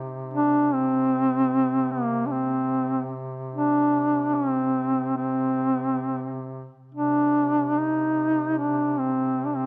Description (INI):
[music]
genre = caucasian folk, Caucasian lament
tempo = 68-76 BPM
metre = 4/4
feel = rubato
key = C minor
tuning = A4 = 440 Hz
[part]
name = warm duduk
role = drone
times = 0.0-9.7 s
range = C3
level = -36 LUFS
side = equal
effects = none
[part]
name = mellow duduk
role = melody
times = 0.3-9.7 s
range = Bb3 to Eb4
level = -24 LUFS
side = equal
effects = none
[sound]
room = light reverb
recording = close, detailed microphones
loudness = -24 LUFS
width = mono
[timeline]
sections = 0.0-9.7 A section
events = none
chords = none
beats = | 0.36 1.16 1.94 2.74 | 3.55 4.36 5.19 6.05 | 6.91 7.76 8.59 9.41